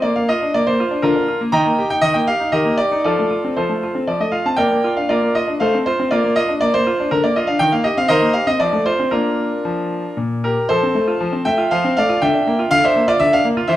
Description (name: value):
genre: classical-period piano sonatina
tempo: 119 BPM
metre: 3/4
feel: rubato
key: Bb major, F major from 10.7 s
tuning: A4 = 440 Hz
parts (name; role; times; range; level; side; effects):
- bright concert grand piano; solo; 0.0-13.8 s; Bb2 to Bb5; -15 LUFS; equal; none
room: moderate recital hall reverb, RT60 1.8 s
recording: close, detailed microphones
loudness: -15 LUFS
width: side -14 dB against mid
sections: 0.0-10.7 A section; 10.7-13.8 B section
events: none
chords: 0.0 Bb; 1.0 Bb/D; 1.5 Eb; 3.0 F; 4.6 Bb; 5.6 F/A; 6.1 Bb; 7.1 Bb/D; 7.6 Eb6; 8.6 F; 9.1 Bb; 10.7 F; 12.2 Bb/D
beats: | 0.04 0.53 1.03 | 1.52 2.02 2.51 | 3.03 3.56 4.08 | 4.59 5.10 5.61 | 6.12 6.62 7.11 | 7.60 8.09 8.59 | 9.11 9.64 10.18 | 10.70 11.20 11.71 | 12.21 12.71 13.21 | 13.71